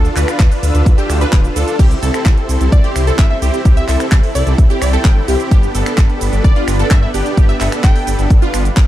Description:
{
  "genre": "EDM, festival progressive house",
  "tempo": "129 BPM",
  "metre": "4/4",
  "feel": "straight",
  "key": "C major",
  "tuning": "A4 = 440 Hz",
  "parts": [
    { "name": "lush unison pad", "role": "sustained chords", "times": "0.0-8.9 s", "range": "G4 to E6", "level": "-27 LUFS", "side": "equal", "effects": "chorus, phaser, sidechain pumping" },
    { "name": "wide unison pluck", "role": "arpeggios", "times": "0.0-8.6 s", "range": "F4 to B4", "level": "-25 LUFS", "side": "equal", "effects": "phaser, sidechain pumping, ping-pong delay" },
    { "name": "supersaw chords", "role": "riff", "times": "0.0-8.6 s", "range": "B3 to B4", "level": "-20 LUFS", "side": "right 1 dB", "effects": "cassette tape, sidechain pumping, ping-pong delay" },
    { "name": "wide detuned saw bass", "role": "bass", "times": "0.0-8.8 s", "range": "D1 to G2", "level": "-16 LUFS", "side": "equal", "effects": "chorus, sidechain pumping" },
    { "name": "house drum kit", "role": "drums", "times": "0.0-8.9 s", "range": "crash cymbal, finger snaps, handclaps, hi-hat, shaker", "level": "-24 LUFS", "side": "right 1 dB", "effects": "none" },
    { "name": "electronic kick drum", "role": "drums", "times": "0.4-8.9 s", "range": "none", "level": "-10 LUFS", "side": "equal", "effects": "none" },
    { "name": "plucky unison lead", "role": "melody", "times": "2.7-8.3 s", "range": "D5 to G5", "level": "-25 LUFS", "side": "left 1 dB", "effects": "ping-pong delay" }
  ],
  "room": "little or no reverb",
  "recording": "dark, warm production",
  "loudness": "-10 LUFS",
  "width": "side -14 dB against mid",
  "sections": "0.0-8.9 A section",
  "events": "none",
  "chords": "0.0 Dm; 1.8 C; 5.5 G"
}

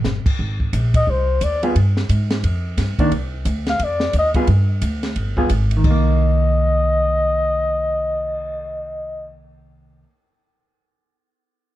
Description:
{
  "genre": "jazz, small-group swing and bop",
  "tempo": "176 BPM",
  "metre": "4/4",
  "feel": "swing 62% on 8ths",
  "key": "C minor",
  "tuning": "A4 = 440 Hz",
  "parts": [
    { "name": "upright bass", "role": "bass", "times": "0.0-10.0 s", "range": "G1 to Ab2", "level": "-19 LUFS", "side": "equal", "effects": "none" },
    { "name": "compact cocktail drum kit", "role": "drums", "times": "0.0-8.5 s", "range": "crash cymbal, cymbal swell, hi-hat, kick drum, ride cymbal, snare drum", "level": "-23 LUFS", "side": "equal", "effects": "none" },
    { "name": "breathy flugelhorn", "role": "melody", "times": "1.0-1.6, 3.7-9.3 s", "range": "C5 to F5", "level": "-20 LUFS", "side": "left 2 dB", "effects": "plate reverb" },
    { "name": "hollow-body jazz guitar", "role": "accompaniment", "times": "1.6-10.1 s", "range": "Eb3 to Ab4", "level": "-22 LUFS", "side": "right 1 dB", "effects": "none" }
  ],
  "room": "little or no reverb",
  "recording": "dark, warm production",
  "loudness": "-16 LUFS",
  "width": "side -14 dB against mid",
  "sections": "0.0-5.8 A section; 5.8-8.6 B section",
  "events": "none",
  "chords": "0.4 Ab; 1.8 G5; 3.1 Csus2; 3.8 Fm7; 4.5 G5; 5.8 Cm7"
}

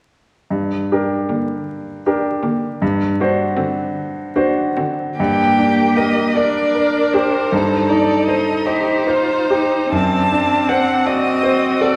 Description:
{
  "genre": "classical, slow romantic movement for piano quartet",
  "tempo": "51 BPM (dotted quarters)",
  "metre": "6/8",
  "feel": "uneven beats, rubato",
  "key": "G minor",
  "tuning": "A4 = 444 Hz",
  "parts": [
    { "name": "bright grand piano", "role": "accompaniment", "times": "0.5-12.0 s", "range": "F#2 to Eb5", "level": "-21 LUFS", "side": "equal", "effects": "none" },
    { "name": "rich violin", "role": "melody", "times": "1.3-12.0 s", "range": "F#4 to A5", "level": "-22 LUFS", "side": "equal", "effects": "none" },
    { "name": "rich cello", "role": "second line", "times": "1.3-12.0 s", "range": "D3 to Bb4", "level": "-26 LUFS", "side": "equal", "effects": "none" },
    { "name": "rich viola", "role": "accompaniment", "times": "1.3-12.0 s", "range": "Bb3 to Eb4", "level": "-23 LUFS", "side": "equal", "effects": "none" }
  ],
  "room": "wet recital hall reverb, RT60 1.5 s",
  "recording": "heard from further back in the room, vinyl crackle",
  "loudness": "-17 LUFS",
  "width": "mono",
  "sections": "0.5-5.2 A section; 5.2-12.0 B section",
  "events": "none",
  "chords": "0.5 Gm; 2.8 D7/G; 5.2 Gm; 7.5 Cm/G; 9.9 D7/F#"
}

